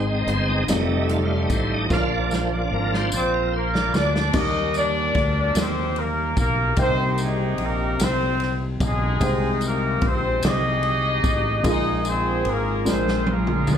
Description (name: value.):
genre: slow gospel.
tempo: 49 BPM (dotted quarters).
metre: 6/8.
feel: straight.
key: Eb major.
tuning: A4 = 436 Hz.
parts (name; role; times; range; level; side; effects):
dark upright piano; accompaniment; 0.0-13.8 s; Bb2 to G5; -29 LUFS; left 1 dB; slapback echo.
bright tonewheel organ; sustained chords; 0.0-4.3 s; F3 to F5; -24 LUFS; right 2 dB; slow rotary speaker, chorus vibrato.
mellow French horn section; sustained chords; 0.0-4.3 s; Eb3 to F4; -34 LUFS; right 1 dB; none.
fingered electric bass; bass; 0.0-13.8 s; F1 to Eb2; -25 LUFS; equal; none.
swinging big-band drum kit; drums; 0.3-13.8 s; crash cymbal, hi-hat, kick drum, ride cymbal, snare drum, toms; -26 LUFS; equal; none.
tambourine; percussion; 0.7-13.8 s; none; -36 LUFS; left 3 dB; none.
clear horn section; melody; 3.1-13.8 s; Ab3 to Eb5; -23 LUFS; left 1 dB; slapback echo.
room: light reverb.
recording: live gig heard through the venue's PA, club reverb.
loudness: -19 LUFS.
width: side -8 dB against mid.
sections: 0.0-4.3 A section; 4.3-13.8 B section.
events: tonewheel organ solo 0.0-4.3; drum fill 1.9-4.3, 12.9-13.8.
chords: 0.0 Ab; 0.7 F7; 1.9 Bb; 4.3 Ebmaj7; 6.8 Cm7; 9.2 Abmaj7; 11.6 Bb7sus4; 12.9 Bb7.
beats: 0.69 | 1.91 3.12 | 4.34 5.56 | 6.78 7.99 | 9.21 10.43 | 11.65 12.86.